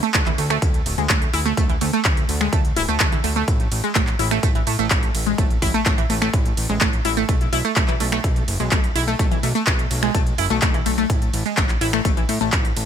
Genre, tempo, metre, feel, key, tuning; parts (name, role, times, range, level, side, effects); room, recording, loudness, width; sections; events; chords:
progressive house; 126 BPM; 4/4; straight; A4 = 440 Hz
glassy wavetable pluck; arpeggios; 0.0-12.5 s; E3 to E4; -23 LUFS; equal; chorus, sidechain pumping, dub echo
big-room dance drum kit; drums; 0.0-12.9 s; finger snaps, handclaps, hi-hat, ride cymbal; -24 LUFS; equal
fat analog bass; bass; 0.1-12.9 s; D1 to A2; -25 LUFS; equal; sidechain pumping
electronic kick drum; drums; 0.1-12.6 s; -20 LUFS; equal
digital ambience; -17 LUFS; side -8 dB against mid
0.0-12.9 A section
0.0 D5; 3.5 A5; 7.3 Esus4 (rootless); 11.1 A5